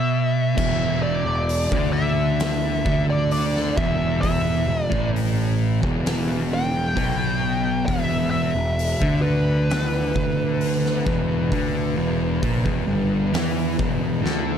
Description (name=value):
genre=stoner and doom metal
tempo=66 BPM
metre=4/4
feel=straight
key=E minor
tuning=A4 = 440 Hz
part: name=fuzz lead guitar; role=melody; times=0.0-14.2 s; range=B4 to G5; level=-26 LUFS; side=equal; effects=wah, distortion, tape echo
part: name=fuzz guitar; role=riff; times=0.0-14.6 s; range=E2 to E3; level=-23 LUFS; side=equal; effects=distortion
part: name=fuzz picked electric bass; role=bass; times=0.6-14.6 s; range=E1 to E2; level=-26 LUFS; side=equal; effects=overdrive
part: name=oversized low-tuned drum kit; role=drums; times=0.6-14.5 s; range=crash cymbal, hi-hat, kick drum, snare drum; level=-27 LUFS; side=equal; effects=none
room=little or no reverb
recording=dark, warm production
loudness=-19 LUFS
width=side -8 dB against mid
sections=0.0-14.6 A section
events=drum fill 14.2-14.6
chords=0.0 E5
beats=| 0.57 1.49 2.40 3.31 | 4.23 5.14 6.05 6.96 | 7.87 8.78 9.69 10.60 | 11.51 12.42 13.33 14.24